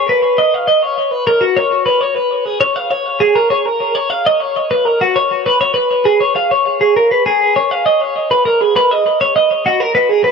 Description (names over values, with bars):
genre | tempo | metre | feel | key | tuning
rock | 67 BPM (dotted quarters) | 6/8 | straight | unclear | A4 = 440 Hz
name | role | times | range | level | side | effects
twelve-string electric guitar | solo | 0.0-10.3 s | F#4 to E#5 | -11 LUFS | equal | tape echo
room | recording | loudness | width
light reverb, digital ambience | echo-heavy mix | -11 LUFS | side -5 dB against mid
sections
0.0-8.8 A section; 8.8-10.3 B section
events
none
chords
none